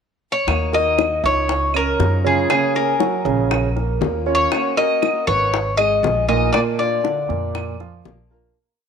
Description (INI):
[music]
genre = latin, Cuban son and guajira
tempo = 119 BPM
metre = 4/4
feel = straight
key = unclear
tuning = A4 = 440 Hz
[part]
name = Cuban tres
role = melody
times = 0.3-7.8 s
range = Ab4 to Eb5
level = -19 LUFS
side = left 2 dB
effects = none
[part]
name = picked old ladder-braced acoustic guitar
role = accompaniment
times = 0.5-8.6 s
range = D3 to Ab4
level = -27 LUFS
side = left 10 dB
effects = none
[part]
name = upright bass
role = bass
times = 0.5-8.5 s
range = Ab1 to Gb2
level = -23 LUFS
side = equal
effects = none
[part]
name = bongos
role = percussion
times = 0.5-8.3 s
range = none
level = -24 LUFS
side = left 12 dB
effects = none
[part]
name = claves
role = percussion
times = 0.5-7.8 s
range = none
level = -29 LUFS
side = right 14 dB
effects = none
[part]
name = dark baby grand piano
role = arpeggios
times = 0.7-8.5 s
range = Bb2 to Eb5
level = -22 LUFS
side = right 11 dB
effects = none
[sound]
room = light reverb, studio reverb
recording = 1960s-style stereo with parts hard left and right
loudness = -16 LUFS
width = side -6 dB against mid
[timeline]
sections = 0.0-0.5 pickup bar; 0.5-8.6 verse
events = fade-out 6.5-8.6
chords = 0.5 Ebm; 1.5 Dbadd9; 2.5 Gbadd9; 3.5 Bbm; 4.5 Ebm7; 5.5 Abm; 6.5 Bb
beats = | 0.48 0.98 1.49 2.00 | 2.50 3.00 3.51 4.01 | 4.52 5.02 5.53 6.03 | 6.54 7.04 7.55 8.06